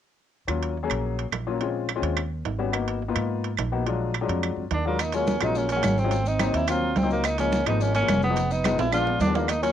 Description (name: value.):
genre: Afro-Cuban jazz.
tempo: 213 BPM.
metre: 4/4.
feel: straight.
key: Eb minor.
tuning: A4 = 443 Hz.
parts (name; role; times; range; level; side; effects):
warm upright piano; accompaniment; 0.5-9.7 s; F3 to Ab4; -28 LUFS; left 7 dB; none.
upright bass; bass; 0.5-9.7 s; F1 to Ab2; -28 LUFS; right 1 dB; none.
claves; percussion; 0.5-9.6 s; none; -32 LUFS; right 12 dB; none.
timbales; percussion; 0.5-9.7 s; none; -33 LUFS; right 11 dB; none.
warm tenor saxophone; melody; 4.7-9.7 s; Bb3 to F4; -26 LUFS; right 1 dB; cassette tape.
mellow trombone; second line; 4.7-9.7 s; Gb3 to D4; -33 LUFS; right 8 dB; none.
congas; percussion; 5.0-9.7 s; none; -29 LUFS; equal; none.
maracas; percussion; 5.0-9.7 s; none; -42 LUFS; left 11 dB; none.
room: moderate small room reverb, RT60 0.5 s.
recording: home recording on cassette.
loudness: -22 LUFS.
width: side -10 dB against mid.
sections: 0.5-5.0 A section; 5.0-9.7 B section.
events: drum fill 8.8-9.5.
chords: 0.5 Ebm9; 1.6 Bbm9; 2.2 Eb7alt; 2.7 Abm7; 3.9 Bb7b13; 5.0 Ebm11; 6.1 Ab7; 7.2 Db69; 8.4 Fm7b5; 8.9 Bb7b9.